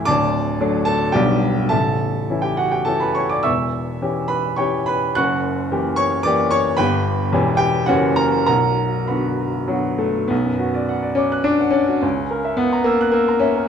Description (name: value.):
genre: classical, virtuoso piano study.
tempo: 96-114 BPM.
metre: 3/4.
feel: rubato.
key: B minor from 3.5 s.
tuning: A4 = 439 Hz.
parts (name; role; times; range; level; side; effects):
clear baby grand piano; solo; 0.0-13.7 s; A0 to F#6; -16 LUFS; equal; none.
room: moderate recital hall reverb, RT60 1.4 s.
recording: close, detailed microphones.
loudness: -17 LUFS.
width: side -7 dB against mid.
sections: 0.0-10.3 A section; 10.3-13.7 B section.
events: none.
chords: 0.1 D; 1.2 G/B; 1.7 A; 3.5 C#dim/E; 5.2 F#7b9; 6.8 G; 7.3 C#m7b5/E; 7.9 F#7b9; 8.5 Bm; 12.0 F#7/C#.